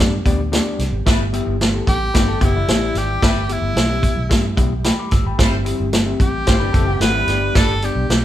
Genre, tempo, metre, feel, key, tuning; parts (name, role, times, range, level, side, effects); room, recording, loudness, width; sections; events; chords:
uptempo 1960s-style soul; 111 BPM; 4/4; straight; A4 = 441 Hz
breathy tenor saxophone; melody; 0.0-8.2 s; D4 to B4; -23 LUFS; equal
overdriven reed electric piano; accompaniment; 0.0-8.1 s; G2 to E6; -26 LUFS; left 6 dB
percussive tonewheel organ; sustained chords; 0.0-8.2 s; D3 to G4; -30 LUFS; equal
vintage muted fingered electric bass; bass; 0.0-8.2 s; F#1 to G2; -21 LUFS; right 1 dB
vintage drum kit; drums; 0.3-8.2 s; hi-hat, kick drum, snare drum; -17 LUFS; equal
warm horn section; second line; 1.1-7.7 s; G3 to C5; -27 LUFS; equal
electric guitar through a small old amp; riff; 2.1-7.4 s; G3 to C5; -26 LUFS; left 5 dB
light reverb; band playing live in one room; -15 LUFS; side -12 dB against mid
0.0-8.2 A section
0.0 G; 1.1 Em; 5.4 C/G; 7.3 G